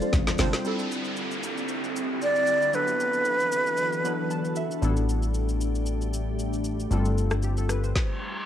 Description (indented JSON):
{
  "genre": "amapiano",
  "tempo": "115 BPM",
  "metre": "4/4",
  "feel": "swing 55% on 16ths",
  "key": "unclear",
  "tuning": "A4 = 438 Hz",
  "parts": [
    { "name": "breathy hollow jazz flute", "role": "melody", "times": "0.0-4.6 s", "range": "B4 to D5", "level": "-24 LUFS", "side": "right 1 dB", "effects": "tape echo" },
    { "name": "glassy digital keys", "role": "accompaniment", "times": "0.0-8.1 s", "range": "F#3 to B5", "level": "-33 LUFS", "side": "left 1 dB", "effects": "chorus" },
    { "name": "glassy FM pad", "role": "sustained chords", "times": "0.0-7.9 s", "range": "D3 to A4", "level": "-32 LUFS", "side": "left 1 dB", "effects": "ensemble chorus, built-in reverb, sidechain pumping" },
    { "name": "afro-pop drum kit", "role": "drums", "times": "0.0-8.1 s", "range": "hi-hat, kick drum, rim click, shaker, snare drum", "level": "-30 LUFS", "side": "equal", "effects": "none" },
    { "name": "hollow log drum bass", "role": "bass", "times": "0.1-0.5 s", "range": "G1 to A1", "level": "-27 LUFS", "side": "equal", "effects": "none" },
    { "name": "congas", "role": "percussion", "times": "0.1-0.5 s", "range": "none", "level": "-32 LUFS", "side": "left 2 dB", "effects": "none" },
    { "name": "downlifter and reverse cymbal", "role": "sound effects", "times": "0.7-8.5 s", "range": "none", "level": "-36 LUFS", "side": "equal", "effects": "none" },
    { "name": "plucky analog bass", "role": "bass", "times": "4.8-7.9 s", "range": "G1 to A1", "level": "-26 LUFS", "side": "equal", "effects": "none" }
  ],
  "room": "little or no reverb",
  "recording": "dry, gritty hardware recording, cassette tape",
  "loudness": "-24 LUFS",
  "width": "side -10 dB against mid",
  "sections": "0.7-8.5 A section",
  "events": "drum fill 0.1-0.7; synth keys fill 3.8-4.8; reverse cymbal 8.1-8.5",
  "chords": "0.0 G9sus4; 0.7 D9sus4; 2.7 E9sus4; 4.8 A9sus4; 6.9 G9sus4"
}